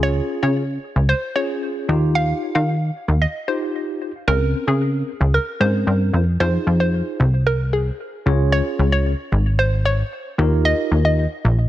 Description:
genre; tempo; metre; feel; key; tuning
dance-pop; 113 BPM; 4/4; straight; F minor; A4 = 439 Hz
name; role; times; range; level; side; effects
hollow square pluck; melody; 0.0-11.4 s; Ab4 to F5; -24 LUFS; equal; chorus, dub echo
mellow tine electric piano; accompaniment; 0.0-11.2 s; C4 to Db5; -25 LUFS; left 1 dB; medium stereo tremolo
plucky analog bass; bass; 0.0-11.7 s; Ab1 to Eb3; -17 LUFS; equal; none
room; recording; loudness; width
little or no reverb; nothing above 10.8 kHz; -17 LUFS; side -14 dB against mid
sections
0.0-6.4 A section; 6.4-11.7 B section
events
build-up 0.0-6.4; drop 6.4-11.7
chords
0.0 Db; 1.9 Ebadd9; 4.3 Bbmadd9/Db; 6.4 Fm7; 8.3 Db; 10.4 Ebadd9

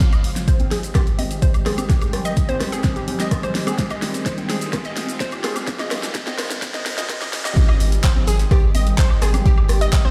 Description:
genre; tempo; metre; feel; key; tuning
progressive house; 127 BPM; 4/4; straight; Ab major; A4 = 440 Hz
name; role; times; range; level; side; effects
evolving wavetable pad; sustained chords; 0.0-10.1 s; Eb3 to G4; -32 LUFS; equal; phaser, built-in reverb, sidechain pumping
deep house drum kit; drums; 0.0-10.0 s; handclaps, hi-hat, snare drum, woodblock; -29 LUFS; equal; none
electronic kick drum; drums; 0.0-10.0 s; none; -20 LUFS; equal; none
maracas; percussion; 0.0-10.0 s; none; -39 LUFS; equal; none
riser; sound effects; 0.0-7.6 s; none; -39 LUFS; equal; none
glassy wavetable pluck; arpeggios; 0.1-10.1 s; G4 to Eb6; -31 LUFS; equal; chorus, sidechain pumping, dub echo
electronic congas and rim click; percussion; 0.6-10.1 s; none; -32 LUFS; equal; sidechain pumping on perc, sidechain pumping on snare
soft brush drum kit; drums; 7.6-10.0 s; hi-hat, snare drum, tambourine; -42 LUFS; equal; none
saturated sub bass; bass; 7.8-9.9 s; Ab1; -21 LUFS; equal; tube saturation, sidechain pumping
room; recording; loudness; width
light reverb, small room reverb; played on a big sound system in a bare room, stone room reverb, high-pass filter; -20 LUFS; mono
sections
0.0-7.6 A section; 7.6-10.1 B section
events
build-up 0.0-7.6; drum fill 0.0-7.6; filter sweep on synth arpeggio sound 0.0-7.6; filter sweep 0.0-7.6; drop 7.6-10.1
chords
0.0 Abmaj7

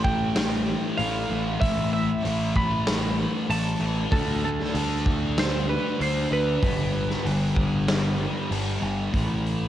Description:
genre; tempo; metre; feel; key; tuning
rock, shoegaze and dream pop; 96 BPM; 4/4; straight; unclear; A4 = 441 Hz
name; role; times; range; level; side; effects
twelve-string electric guitar; melody; 0.0-8.5 s; A4 to B5; -30 LUFS; right 2 dB; phaser, analog delay
thick fuzz guitar; riff; 0.0-9.7 s; G2 to D4; -27 LUFS; left 2 dB; distortion, lush chorus, cassette tape
growling picked electric bass; bass; 0.0-9.7 s; G1 to D2; -28 LUFS; equal; overdrive
huge arena drum kit; drums; 0.0-9.6 s; hi-hat, kick drum, snare drum; -28 LUFS; equal; cassette tape
room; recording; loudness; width
light reverb; home recording on cassette; -22 LUFS; side -12 dB against mid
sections
0.0-9.1 A section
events
none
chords
0.0 A7(no3); 4.1 D5; 6.6 G; 9.1 A5

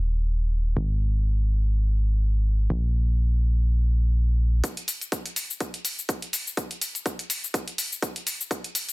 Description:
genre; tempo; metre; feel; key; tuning
piano house; 124 BPM; 4/4; swing 56% on 16ths; unclear; A4 = 437 Hz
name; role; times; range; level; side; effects
solid FM bass; bass; 0.0-4.6 s; Eb1 to Bb1; -21 LUFS; equal; sidechain pumping
electronic hi-hat and cabasa; drums; 4.6-8.9 s; none; -28 LUFS; left 2 dB; overdrive
electronic kick drum; drums; 4.6-8.6 s; none; -30 LUFS; equal; high-pass filter on kick, high-pass filter on room
room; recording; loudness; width
little or no reverb; dense, heavily limited modern master; -23 LUFS; side -23 dB against mid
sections
0.0-4.6 A section; 4.6-8.9 B section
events
build-up 4.6-8.9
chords
none

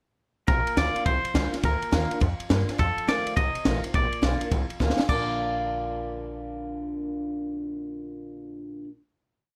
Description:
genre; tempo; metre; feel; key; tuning
rockabilly; 209 BPM; 4/4; swing 64% on 8ths; Bb major; A4 = 440 Hz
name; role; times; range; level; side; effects
twangy electric guitar; melody; 0.5-8.8 s; A4 to Eb5; -31 LUFS; equal; analog delay
picked old ladder-braced acoustic guitar; accompaniment; 0.5-8.9 s; F2 to F4; -34 LUFS; equal; none
upright bass; bass; 0.5-8.8 s; A1 to G2; -31 LUFS; equal; none
compact cocktail drum kit; drums; 0.5-5.2 s; crash cymbal, kick drum, ride cymbal, snare drum; -30 LUFS; equal; none
room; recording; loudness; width
little or no reverb; none; -26 LUFS; mono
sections
0.5-5.1 A section; 5.1-7.4 final chord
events
drum fill 4.8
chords
0.5 Bb; 2.8 F7; 3.9 Bb

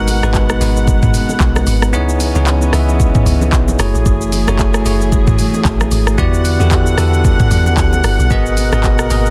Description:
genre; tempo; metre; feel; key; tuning
amapiano; 113 BPM; 4/4; swing 58% on 16ths; C# minor; A4 = 441 Hz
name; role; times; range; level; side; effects
bell-like tine electric piano; accompaniment; 0.0-9.3 s; G#3 to E5; -21 LUFS; equal; none
warm chamber string section; sustained chords; 0.0-9.3 s; B2 to F#5; -24 LUFS; equal; none
deep log drum bass; bass; 0.0-9.3 s; F#1 to E2; -17 LUFS; equal; none
afro-pop drum kit; drums; 0.1-9.3 s; handclaps, hi-hat, kick drum, rim click, shaker, toms; -18 LUFS; equal; none
bongos and congas; percussion; 0.1-9.0 s; none; -28 LUFS; equal; none
room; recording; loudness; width
little or no reverb; dense, heavily limited modern master; -13 LUFS; mono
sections
0.0-9.3 A section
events
kick muted 1.9-3.0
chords
0.0 G#m9; 1.9 C#m9; 3.8 F#m9; 6.2 Em9; 8.3 G#m9

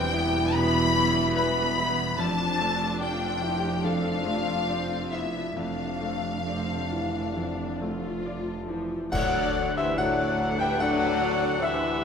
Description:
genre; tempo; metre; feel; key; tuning
cinematic, emotional film score for orchestra; 66-74 BPM; 4/4; rubato; unclear; A4 = 440 Hz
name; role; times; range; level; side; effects
rich studio violin section; melody; 0.0-12.0 s; A4 to B5; -30 LUFS; left 5 dB; none
warm studio violin section; second line; 0.0-12.0 s; C5 to B5; -34 LUFS; left 1 dB; none
clear concert grand piano; accompaniment; 0.0-12.0 s; D2 to G5; -31 LUFS; left 1 dB; none
rich studio viola section; accompaniment; 0.0-12.0 s; F3 to F#5; -34 LUFS; equal; none
clear French horn section; sustained chords; 0.0-12.0 s; D3 to E4; -32 LUFS; left 1 dB; none
concert harp; arpeggios; 0.0-12.0 s; D3 to D6; -38 LUFS; left 4 dB; none
rich studio cello section; bass; 0.0-12.0 s; D2 to F2; -35 LUFS; right 3 dB; none
warm studio double bass section; bass; 0.0-12.0 s; E1 to D2; -35 LUFS; right 3 dB; none
clear oboe; second line; 9.1-12.0 s; E5 to G5; -31 LUFS; equal; none
mellow hollow large flute ensemble; second line; 9.1-12.0 s; G4 to B4; -33 LUFS; left 2 dB; none
clash cymbals and concert bass drum; percussion; 9.1-10.8 s; none; -35 LUFS; equal; none
room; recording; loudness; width
wet scoring stage reverb, RT60 1.4 s; minimal, uncompressed stereo recording; -24 LUFS; side -6 dB against mid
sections
0.0-9.1 A section; 9.1-12.0 B section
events
band accent 9.1-10.0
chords
0.0 Emadd9; 2.2 Dmadd9/F; 9.1 D

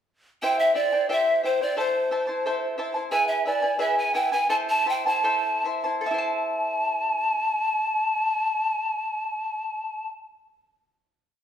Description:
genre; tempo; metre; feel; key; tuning
andean folk; 71-90 BPM; 2/4; straight; A minor; A4 = 437 Hz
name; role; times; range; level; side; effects
breathy pan flute; melody; 0.4-10.1 s; C5 to A5; -23 LUFS; equal; none
charango; accompaniment; 0.4-10.3 s; E4 to A5; -27 LUFS; equal; none
room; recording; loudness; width
wet large studio reverb, RT60 1.1 s; band playing live in one room; -22 LUFS; side -9 dB against mid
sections
0.4-6.0 A section; 6.0-9.4 final chord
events
slowing down 3.1-6.0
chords
0.4 C; 1.8 Am; 3.1 E; 4.5 Am

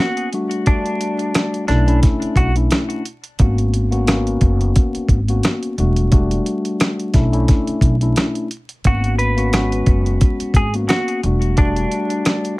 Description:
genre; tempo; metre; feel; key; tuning
hip hop, boom-bap hip-hop; 88 BPM; 4/4; swing 56% on 16ths; unclear; A4 = 440 Hz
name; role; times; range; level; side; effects
semi-hollow electric guitar; melody; 0.0-2.5, 8.9-12.6 s; D4 to B4; -23 LUFS; equal; high-pass filter, low-pass filter, ping-pong delay
mellow tine electric piano; accompaniment; 0.0-12.6 s; G3 to F#4; -21 LUFS; left 2 dB; cassette tape, high-pass filter, low-pass filter
dusty soul sampler-style drum kit; drums; 0.2-12.6 s; hi-hat, kick drum, rim click, snare drum; -16 LUFS; equal; none
upright bass; bass; 1.7-11.8 s; E1 to B1; -18 LUFS; equal; none
room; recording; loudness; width
light reverb; vinyl crackle; -15 LUFS; side -21 dB against mid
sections
0.0-12.6 A section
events
break 0.0-0.7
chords
0.3 Dadd11/G; 1.7 Bm11; 3.4 G#m11; 5.8 Em11; 7.1 Bm11; 8.8 G#m11; 11.2 Em11

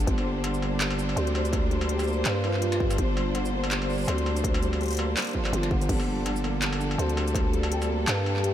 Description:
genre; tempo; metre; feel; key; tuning
half-time drum and bass; 165 BPM; 4/4; swing 56% on 16ths, half-time; unclear; A4 = 440 Hz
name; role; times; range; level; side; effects
clear studio string section; sustained chords; 0.0-8.5 s; G3 to C5; -33 LUFS; left 1 dB; vintage 12-bit sampler grit, sidechain pumping
felt-muted upright piano; arpeggios; 0.0-8.5 s; G2 to G4; -32 LUFS; right 2 dB; analog delay
growling 808-style bass; bass; 0.0-8.5 s; G1 to G2; -27 LUFS; equal; tube saturation
industrial drum kit; drums; 0.0-8.5 s; crash cymbal, handclaps, hi-hat, shaker, struck metal; -32 LUFS; equal; none
electronic kick drum; drums; 0.1-7.4 s; none; -28 LUFS; equal; distortion
breathy flute-like synth lead; melody; 1.9-3.0, 7.7-8.5 s; F4 to G4; -35 LUFS; equal; ensemble chorus, cassette tape, tape echo
room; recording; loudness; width
moderate huge ambient reverb, RT60 7.2 s; dreamy mix soaked in reverb; -24 LUFS; side -11 dB against mid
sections
0.0-8.5 A section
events
none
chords
0.0 Gm

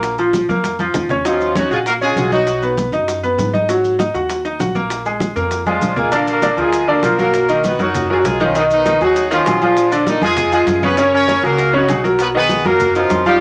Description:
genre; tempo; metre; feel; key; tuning
latin, salsa; 197 BPM; 4/4; straight; unclear; A4 = 440 Hz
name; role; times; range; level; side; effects
bright concert grand piano; accompaniment; 0.0-13.4 s; Db3 to Gb5; -18 LUFS; equal; none
upright bass; bass; 0.0-13.4 s; Bb1 to G#2; -29 LUFS; equal; none
bongos; percussion; 0.0-13.3 s; none; -29 LUFS; equal; none
congas; percussion; 0.0-13.4 s; none; -27 LUFS; equal; none
maracas; percussion; 0.0-13.4 s; none; -37 LUFS; equal; none
clear horn section; melody; 1.3-2.7, 5.7-13.4 s; Eb3 to Db5; -19 LUFS; equal; none
room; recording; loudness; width
wet studio ambience, RT60 0.5 s; none; -16 LUFS; mono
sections
0.0-6.1 A section; 6.1-13.4 B section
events
drum fill 0.5-1.3, 5.7-6.1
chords
0.0 Bb5; 1.3 Ebm7; 2.5 B6; 3.7 Ab5; 4.9 Bb7; 6.1 Bb; 7.3 Bmaj7; 8.6 Abm7/Cb; 9.8 Bb7; 11.0 Gbadd9; 12.2 Bmaj7

